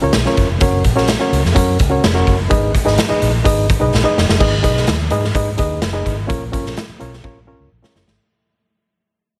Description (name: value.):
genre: uptempo 1960s-style soul.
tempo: 127 BPM.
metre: 4/4.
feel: straight.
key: G# dorian.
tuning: A4 = 436 Hz.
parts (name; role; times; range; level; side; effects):
barky reed electric piano; accompaniment; 0.0-8.0 s; G#2 to D#5; -21 LUFS; equal; overdrive.
vintage muted fingered electric bass; bass; 0.0-8.2 s; E#1 to G#2; -21 LUFS; equal; none.
raw garage drum kit; drums; 0.1-8.2 s; crash cymbal, hi-hat, kick drum, snare drum; -20 LUFS; equal; none.
room: light reverb.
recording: heavily compressed radio sound, multiband compression.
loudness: -15 LUFS.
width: mono.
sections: 0.0-4.4 A section; 4.4-8.2 B section.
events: drum fill 3.9-4.4, 7.2-8.2; fade-out 4.4-8.2.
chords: 0.0 A#m; 0.6 F#; 2.5 G#m; 6.3 A#m.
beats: 0.14 | 0.61 1.09 1.56 2.04 | 2.51 2.98 3.46 3.93 | 4.40 4.87 5.35 5.82 | 6.29 6.76 7.24 7.71.